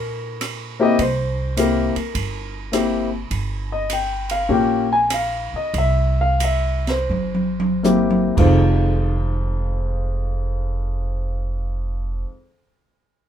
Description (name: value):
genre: jazz piano trio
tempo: 72-103 BPM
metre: 4/4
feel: swing 67% on 8ths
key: F minor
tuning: A4 = 438 Hz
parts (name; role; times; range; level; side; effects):
- warm upright piano; melody; 0.0-12.3 s; F2 to Ab5; -21 LUFS; left 2 dB; none
- upright bass; bass; 0.0-12.2 s; F1 to Bb2; -22 LUFS; right 1 dB; none
- open jazz drum kit; drums; 0.4-8.5 s; crash cymbal, hi-hat, kick drum, ride cymbal, rim click, snare drum, toms; -25 LUFS; right 1 dB; none
room: light reverb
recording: minimal, uncompressed stereo recording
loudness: -18 LUFS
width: side -10 dB against mid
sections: 0.0-8.6 A section; 8.6-12.0 B section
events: slowing down 3.3-8.6; drum fill 7.1-8.6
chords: 0.0 N.C.; 1.0 C7; 3.3 Gm7; 5.7 C; 8.2 Fm7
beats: 0.41 | 0.99 1.57 2.15 2.74 | 3.32 3.90 4.50 5.11 | 5.74 6.40 7.10 7.84 | 8.64 9.47 10.31 11.14